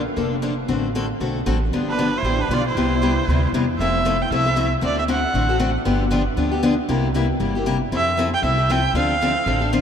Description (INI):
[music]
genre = acoustic string swing (jazz manouche)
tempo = 232 BPM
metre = 4/4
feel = swing 56% on 8ths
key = C major, F major from 3.8 s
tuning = A4 = 440 Hz
[part]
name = upright bass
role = bass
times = 0.0-9.8 s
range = F1 to F2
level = -24 LUFS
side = right 1 dB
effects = none
[part]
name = picked steel-string acoustic guitar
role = accompaniment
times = 0.2-9.8 s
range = C3 to A4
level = -21 LUFS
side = left 3 dB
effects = none
[part]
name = rich erhu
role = melody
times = 1.9-5.7, 8.0-9.8 s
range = B4 to G5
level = -24 LUFS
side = right 2 dB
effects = none
[part]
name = musette accordion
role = second line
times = 1.9-3.5 s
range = D4 to F4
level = -32 LUFS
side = right 4 dB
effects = none
[sound]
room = wet huge ambient reverb, RT60 7.7 s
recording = in a vast, echoing space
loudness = -18 LUFS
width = side -8 dB against mid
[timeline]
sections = 0.0-3.8 A section; 3.8-9.8 B section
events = none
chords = 0.0 Bbmaj7; 0.7 D7/A; 1.7 G7; 2.8 Cmaj7; 3.8 Fmaj7; 4.8 D7; 5.9 G7; 6.9 C7; 7.9 Fmaj7; 9.0 Dm7